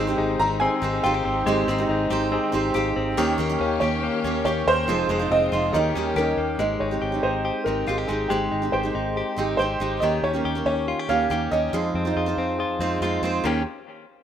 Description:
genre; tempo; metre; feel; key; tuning
indie pop; 140 BPM; 4/4; straight; unclear; A4 = 441 Hz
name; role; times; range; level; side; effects
picked steel-string acoustic guitar; accompaniment; 0.0-13.6 s; Eb3 to Db5; -26 LUFS; right 6 dB; none
reed electric piano; accompaniment; 0.0-13.6 s; Eb4 to Bb5; -33 LUFS; left 4 dB; fast tremolo
warm studio string section; sustained chords; 0.0-6.6 s; Eb3 to G4; -34 LUFS; left 3 dB; none
direct-recorded clean electric guitar; arpeggios; 0.0-13.6 s; F2 to G4; -26 LUFS; left 5 dB; spring reverb, analog delay
vintage muted fingered electric bass; bass; 0.0-13.6 s; F1 to F2; -31 LUFS; left 1 dB; none
warm upright piano; melody; 0.4-13.0 s; G4 to Bb5; -25 LUFS; right 2 dB; none
room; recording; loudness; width
moderate studio reverb, RT60 0.5 s; rough home demo mix; -21 LUFS; side -9 dB against mid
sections
0.0-6.6 A section; 6.6-13.4 B section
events
reed electric piano fill 1.9-3.2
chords
0.0 Abmaj7; 3.2 Eb7; 4.9 Fm7; 5.7 Eb7; 6.6 Abmaj7; 10.0 Eb7; 11.7 Fm7; 13.4 Eb7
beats
0.18 0.61 1.04 | 1.47 1.89 2.32 2.75 | 3.17 3.60 4.03 4.45 | 4.88 5.31 5.74 6.16 | 6.59 7.02 7.45 7.88 | 8.30 8.73 9.16 9.59 | 10.02 10.45 10.87 11.30 | 11.73 12.16 12.59 13.01 | 13.44

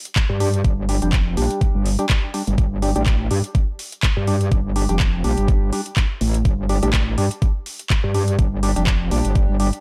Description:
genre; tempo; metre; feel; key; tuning
bass house; 124 BPM; 4/4; swing 55% on 16ths; G minor; A4 = 442 Hz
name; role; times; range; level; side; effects
garage drum kit; drums; 0.1-9.8 s; handclaps, hi-hat; -29 LUFS; equal; overdrive
electronic kick drum; drums; 0.2-9.5 s; none; -21 LUFS; equal; overdrive
metallic wobble bass; bass; 0.3-9.7 s; F1 to G2; -22 LUFS; equal; distortion, chorus, overdrive, sidechain pumping
percussive organ stab; stabs; 0.4-9.7 s; G3 to G4; -28 LUFS; equal; lush chorus, sidechain pumping, digital delay
room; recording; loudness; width
digital ambience; dark, warm production; -20 LUFS; mono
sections
0.0-9.8 A section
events
filter sweep on synth stab 0.0-9.8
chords
0.0 G5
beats
0.16 | 0.65 1.13 1.61 2.10 | 2.58 3.06 3.55 4.03 | 4.52 5.00 5.48 5.97 | 6.45 6.94 7.42 7.90 | 8.39 8.87 9.36

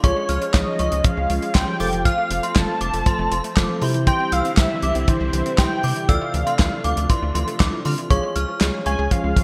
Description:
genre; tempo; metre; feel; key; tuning
synth-pop; 119 BPM; 4/4; straight; unclear; A4 = 438 Hz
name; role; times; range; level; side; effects
unison lead; melody; 0.0-9.4 s; C5 to A5; -27 LUFS; equal; analog chorus
synth chime; second line; 0.0-9.0 s; C6 to F6; -31 LUFS; equal; ensemble chorus, digital delay
tine electric piano; accompaniment; 0.0-9.4 s; E4 to D5; -32 LUFS; equal; subtle chorus
soft string machine; sustained chords; 0.0-9.4 s; C3 to F4; -33 LUFS; equal; phaser, ensemble chorus
analog pluck; arpeggios; 0.0-9.4 s; E3 to A6; -32 LUFS; equal; chorus, digital delay
rubbery square bass; bass; 0.0-9.4 s; F1 to D3; -27 LUFS; equal; none
damped 70s drum kit; drums; 0.0-9.4 s; handclaps, hi-hat, kick drum, snare drum; -22 LUFS; equal; gated reverb
room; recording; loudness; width
moderate lush hall reverb, RT60 1.6 s; bright 1980s-style digital production; -20 LUFS; mono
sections
0.0-8.1 A section; 8.1-9.4 B section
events
none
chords
0.0 Db; 1.8 F; 3.8 Cadd9; 6.1 Dmadd9; 8.1 Db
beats
| 0.04 0.54 1.05 1.55 | 2.06 2.56 3.06 3.57 | 4.07 4.58 5.08 5.58 | 6.09 6.59 7.10 7.60 | 8.11 8.61 9.11

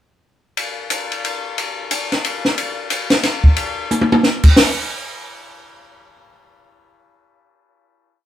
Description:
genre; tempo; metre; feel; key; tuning
jazz; 180 BPM; 3/4; swing 62% on 8ths; none; none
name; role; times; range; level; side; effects
compact cocktail drum kit; drums; 0.6-4.7 s; crash cymbal, hi-hat, kick drum, ride cymbal, snare drum, toms; -15 LUFS; equal; none
room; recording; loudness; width
moderate studio reverb, RT60 0.5 s; band playing live in one room; -15 LUFS; side -12 dB against mid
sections
0.6-4.6 A section; 4.6-6.6 final hit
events
drum fill 3.9-4.2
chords
none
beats
| 0.56 0.90 1.23 | 1.56 1.90 2.23 | 2.56 2.89 3.23 | 3.56 3.89 4.22 | 4.56

